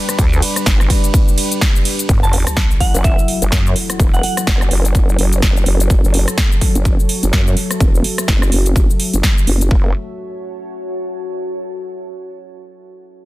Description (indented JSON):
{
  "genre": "bass house",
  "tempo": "126 BPM",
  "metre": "4/4",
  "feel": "swing 58% on 16ths",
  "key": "F# phrygian",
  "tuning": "A4 = 440 Hz",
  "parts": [
    { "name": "dark analog pad", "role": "sustained chords", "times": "0.0-9.9 s", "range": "F#3 to E5", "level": "-25 LUFS", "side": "left 2 dB", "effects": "chorus, sidechain pumping" },
    { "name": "deep dark ambient pad", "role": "texture", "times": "0.0-11.6 s", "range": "F#4 to B5", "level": "-28 LUFS", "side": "equal", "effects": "chorus, built-in reverb, sidechain pumping" },
    { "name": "big-room dance drum kit", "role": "drums", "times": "0.1-9.7 s", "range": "cabasa, hi-hat, ride cymbal, rim click, snare drum", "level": "-19 LUFS", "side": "equal", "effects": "studio reverb" },
    { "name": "vowel-sweep wobble bass", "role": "bass", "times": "0.2-9.9 s", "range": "E1 to F#2", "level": "-16 LUFS", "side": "equal", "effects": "chorus, overdrive, sidechain pumping" },
    { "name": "electronic kick drum", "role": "drums", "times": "0.2-9.8 s", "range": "none", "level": "-14 LUFS", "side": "equal", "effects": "studio reverb" },
    { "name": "sub drop", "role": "sound effects", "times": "2.2-4.0 s", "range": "none", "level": "-24 LUFS", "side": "equal", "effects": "none" },
    { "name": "soft synth bell", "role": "melody", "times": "2.2-4.3 s", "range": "E5 to A5", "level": "-24 LUFS", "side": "right 2 dB", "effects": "chorus, dub echo" }
  ],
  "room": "little or no reverb",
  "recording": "dense, heavily limited modern master",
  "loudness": "-12 LUFS",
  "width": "side -18 dB against mid",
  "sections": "0.0-2.1 A section; 2.1-9.7 B section; 9.7-11.6 C section",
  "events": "drop 0.0-2.1; fade-out on ambient pad 2.1-9.7; impact 2.1-4.0; filter sweep on wobble bass 2.1-9.7",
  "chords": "0.0 G; 2.1 F#m7"
}